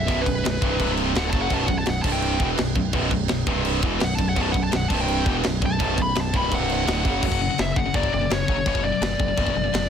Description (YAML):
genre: heavy metal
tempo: 168 BPM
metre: 4/4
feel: straight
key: unclear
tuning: A4 = 440 Hz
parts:
  - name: high-gain lead guitar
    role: melody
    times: 0.0-9.9 s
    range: B4 to B5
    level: -26 LUFS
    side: left 1 dB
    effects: distortion
  - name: tight distorted guitar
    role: riff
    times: 0.0-9.9 s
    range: B1 to F#3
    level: -27 LUFS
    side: left 14 dB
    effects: distortion
  - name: tight distorted guitar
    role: riff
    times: 0.0-7.2 s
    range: B1 to F#3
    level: -26 LUFS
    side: right 12 dB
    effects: distortion
  - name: growling picked electric bass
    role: bass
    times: 0.0-9.9 s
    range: B0 to F#1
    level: -28 LUFS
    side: equal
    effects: overdrive
  - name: tight metal drum kit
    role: drums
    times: 0.1-9.8 s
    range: china cymbal, crash cymbal, kick drum, snare drum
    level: -25 LUFS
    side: equal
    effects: none
room: light reverb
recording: dense, heavily limited modern master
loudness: -20 LUFS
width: side -8 dB against mid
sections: 0.0-7.2 A section; 7.2-9.9 B section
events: lead electric guitar solo 0.0-7.2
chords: 0.0 B5; 0.8 C5; 1.1 Bm; 2.0 C5; 2.4 B5; 3.5 C5; 3.8 B5; 4.9 C5; 5.3 B5; 6.5 C5; 6.9 Dmaj7; 7.2 F#5; 8.7 Bm/F#